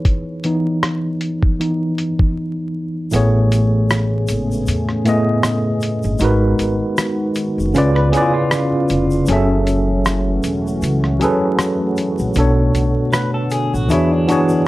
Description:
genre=lo-fi hip hop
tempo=78 BPM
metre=4/4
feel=swing 56% on 16ths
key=C# minor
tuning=A4 = 442 Hz
part: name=tine electric piano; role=accompaniment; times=0.0-14.7 s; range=A2 to E5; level=-17 LUFS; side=equal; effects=overdrive, medium stereo tremolo, cassette tape, low-pass filter
part: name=lo-fi sampler-style drum kit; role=drums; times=0.1-14.5 s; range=hi-hat, kick drum, rim click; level=-19 LUFS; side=equal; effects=none
part: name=dark analog pad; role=sustained chords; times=4.1-14.7 s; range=C#3 to C#5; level=-26 LUFS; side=equal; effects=chorus, low-pass filter
part: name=upright bass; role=bass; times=3.1-14.3 s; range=E1 to E2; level=-19 LUFS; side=equal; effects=none
part: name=egg shaker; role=percussion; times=3.1-14.6 s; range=none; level=-39 LUFS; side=left 3 dB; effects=none
part: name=electric guitar through a small old amp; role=second line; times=8.0-14.7 s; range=D4 to B4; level=-23 LUFS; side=left 2 dB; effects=low-pass filter, analog delay
room=light reverb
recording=vinyl crackle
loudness=-15 LUFS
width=side -18 dB against mid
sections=0.0-3.1 A section; 3.1-14.7 B section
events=break 0.0-3.1; tine electric piano solo 0.0-3.1; kick muted 3.1-14.7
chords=0.0 C#m9; 3.1 Amaj9; 6.2 G#m7; 7.7 C#7b9; 9.3 F#m7; 12.4 Bm7; 13.9 E13

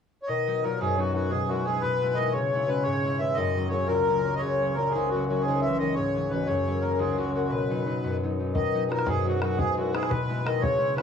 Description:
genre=celtic folk, Celtic jig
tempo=116 BPM (dotted quarters)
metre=6/8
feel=straight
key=B major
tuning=A4 = 440 Hz
part: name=accordion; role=melody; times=0.2-11.0 s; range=F#4 to E5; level=-29 LUFS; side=right 2 dB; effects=cassette tape
part: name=mellow bassoon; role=second line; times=0.3-11.0 s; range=F#2 to E3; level=-30 LUFS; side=left 7 dB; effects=cassette tape, tape echo
part: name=concert harp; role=accompaniment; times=0.3-11.0 s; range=C#2 to E4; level=-27 LUFS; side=left 1 dB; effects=cassette tape
part: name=bodhran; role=percussion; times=8.6-11.0 s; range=none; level=-31 LUFS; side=left 2 dB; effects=none
room=moderate studio reverb, RT60 0.6 s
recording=home recording on cassette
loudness=-24 LUFS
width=side -7 dB against mid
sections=0.3-8.6 A section; 8.6-11.0 A section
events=none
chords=0.3 B; 1.3 E; 2.3 C#m; 3.4 F#; 5.4 C#m; 6.5 F#; 7.5 B; 9.6 E

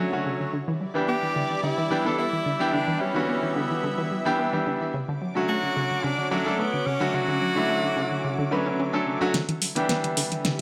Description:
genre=nu-disco, nu disco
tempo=109 BPM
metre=4/4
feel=straight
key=E dorian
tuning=A4 = 438 Hz
part: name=bright grand piano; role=accompaniment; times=0.0-10.6 s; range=D3 to B4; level=-29 LUFS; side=equal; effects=vintage 12-bit sampler grit, delay
part: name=lush unison pad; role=sustained chords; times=0.0-10.6 s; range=D3 to D6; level=-35 LUFS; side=equal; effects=chorus, phaser
part: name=analog pluck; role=arpeggios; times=0.0-10.5 s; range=C#3 to C#4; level=-32 LUFS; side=equal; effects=chorus, cassette tape, digital delay
part: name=clear tenor saxophone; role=melody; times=1.1-8.8 s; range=B3 to G4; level=-31 LUFS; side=equal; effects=digital delay
part: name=pop drum kit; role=drums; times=9.3-10.6 s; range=hi-hat, snare drum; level=-29 LUFS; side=equal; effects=studio reverb
room=moderate plate reverb, RT60 1.4 s, studio reverb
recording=none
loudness=-25 LUFS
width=mono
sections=0.0-9.3 A section; 9.3-10.6 B section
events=filter sweep on synth arpeggio sound 0.0-9.3, 9.3-10.6; build-up 9.3-10.6; drum fill 9.3-10.6; filter sweep on analog synth pad 9.3-10.6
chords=0.0 Dmaj7; 0.5 Em7; 4.9 Dmaj7; 9.3 Em7

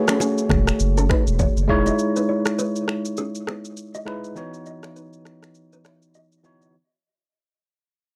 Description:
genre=afrobeats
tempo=101 BPM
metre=4/4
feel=swing 58% on 16ths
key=unclear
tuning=A4 = 445 Hz
part: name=tine electric piano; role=accompaniment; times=0.0-6.8 s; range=E3 to C#5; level=-26 LUFS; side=equal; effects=none
part: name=mellow electric guitar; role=riff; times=0.0-6.7 s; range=B3 to E5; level=-31 LUFS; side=equal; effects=tape echo
part: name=downlifter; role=sound effects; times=0.0-2.0 s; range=none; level=-47 LUFS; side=equal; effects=none
part: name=afro-pop drum kit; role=drums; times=0.1-6.7 s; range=finger snaps, kick drum, rim click, shaker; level=-25 LUFS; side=equal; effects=none
part: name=bongos and congas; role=percussion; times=0.1-2.0 s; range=none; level=-29 LUFS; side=equal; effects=none
part: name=saturated sub bass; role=bass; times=0.5-1.9 s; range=E1 to F#1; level=-23 LUFS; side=equal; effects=none
room=little or no reverb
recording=dry, gritty hardware recording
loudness=-21 LUFS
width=mono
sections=0.0-6.7 A section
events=fade-out 0.0-6.7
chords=0.0 F#madd9/E; 1.7 C#madd9/E; 4.4 Badd9/E

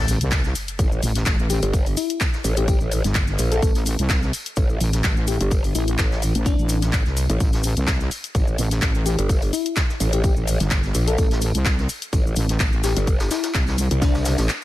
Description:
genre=bass house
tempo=127 BPM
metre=4/4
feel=swing 54% on 16ths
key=A phrygian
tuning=A4 = 441 Hz
part: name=wobble bass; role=bass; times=0.0-13.9 s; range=G1 to C2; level=-21 LUFS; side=equal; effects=chorus, tube saturation, sidechain pumping
part: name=sub drop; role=sound effects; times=0.0-1.7 s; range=none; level=-32 LUFS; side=equal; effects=none
part: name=garage drum kit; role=drums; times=0.1-14.6 s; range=handclaps, hi-hat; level=-28 LUFS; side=left 1 dB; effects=none
part: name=vintage brush drum kit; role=drums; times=0.1-14.6 s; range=hi-hat, snare drum, tambourine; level=-36 LUFS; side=equal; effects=high-pass filter on hats, high-pass filter on snare, high-pass filter on perc, high-pass filter on room
part: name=maracas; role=percussion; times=0.1-14.6 s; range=none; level=-34 LUFS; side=left 2 dB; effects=none
part: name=electronic kick drum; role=drums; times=0.3-14.1 s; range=none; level=-21 LUFS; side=equal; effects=none
part: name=growl bass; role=bass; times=0.8-14.5 s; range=G1 to C2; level=-21 LUFS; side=equal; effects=chorus, overdrive, sidechain pumping
part: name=bell-like FM electric piano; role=melody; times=1.5-14.4 s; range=D4 to A4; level=-28 LUFS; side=left 5 dB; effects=chorus, tremolo, ping-pong delay
room=small room ambience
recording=none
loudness=-18 LUFS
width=side -15 dB against mid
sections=0.0-14.6 A section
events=impact 0.0-1.7; break 14.5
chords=0.0 Am

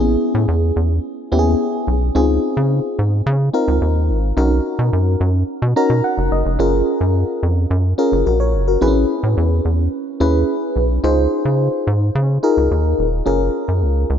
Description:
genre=early-eighties boogie funk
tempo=108 BPM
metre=4/4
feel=straight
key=F# major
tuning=A4 = 440 Hz
part: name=FM electric piano with auto-pan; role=accompaniment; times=0.0-14.1 s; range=B3 to A#5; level=-18 LUFS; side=left 1 dB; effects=phaser
part: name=rubbery square bass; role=bass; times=0.0-14.2 s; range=D#1 to C#3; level=-16 LUFS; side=equal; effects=none
room=moderate cathedral reverb, RT60 4.3 s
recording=dreamy mix soaked in reverb, nothing above 7.6 kHz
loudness=-15 LUFS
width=side -9 dB against mid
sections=0.0-14.2 A section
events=FM electric piano fill 5.5-6.6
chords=0.0 Amaj9; 2.2 C#maj9; 4.4 Bmaj9; 6.6 F#maj9; 8.8 Amaj9; 11.0 C#maj9; 13.3 F#maj9

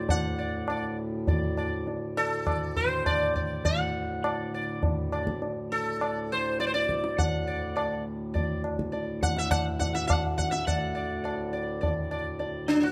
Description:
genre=indian classical, Hindustani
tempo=102 BPM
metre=3/4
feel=straight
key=D raga khamaj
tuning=A4 = 440 Hz
part: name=sitar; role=melody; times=0.0-12.9 s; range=D4 to F#5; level=-32 LUFS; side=equal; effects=none
part: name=hand-pumped harmonium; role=drone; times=0.0-12.9 s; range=D2 to A2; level=-36 LUFS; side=equal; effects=none
part: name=tabla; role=percussion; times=0.1-12.6 s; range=none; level=-32 LUFS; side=equal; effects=none
room=moderate recital hall reverb, RT60 1.6 s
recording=close, detailed microphones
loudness=-29 LUFS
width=mono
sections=0.0-10.7 A section; 10.7-12.9 B section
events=speeding up 0.0-12.9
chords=none

